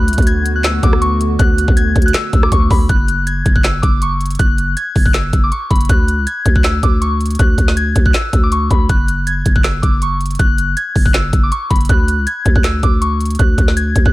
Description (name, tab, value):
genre	hip hop, trap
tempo	160 BPM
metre	4/4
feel	half-time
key	unclear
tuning	A4 = 440 Hz
part	soft synth bell	melody	0.0-14.1 s	B5 to G#6	-19 LUFS	left 1 dB	chorus, low-pass filter, ping-pong delay
part	dark analog pad	sustained chords	0.0-2.9 s	D3 to F#4	-24 LUFS	left 1 dB	chorus
part	growling 808-style bass	bass	0.0-14.1 s	F#1 to D2	-16 LUFS	equal	none
part	trap drum kit	drums	0.1-14.1 s	handclaps, hi-hat, kick drum, rim click, snare drum	-14 LUFS	equal	none
room	digital ambience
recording	none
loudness	-12 LUFS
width	side -18 dB against mid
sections	0.0-2.9 A section; 2.9-14.1 B section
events	none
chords	0.0 D6; 2.9 N.C.; 5.9 D; 8.9 N.C.; 11.9 D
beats	0.27 0.64 1.02 | 1.39 1.77 2.14 2.52 | 2.89 3.27 3.64 4.02 | 4.39 4.77 5.14 5.52 | 5.89 6.27 6.64 7.02 | 7.39 7.77 8.14 8.52 | 8.89 9.27 9.64 10.02 | 10.39 10.77 11.14 11.52 | 11.89 12.27 12.64 13.02 | 13.39 13.77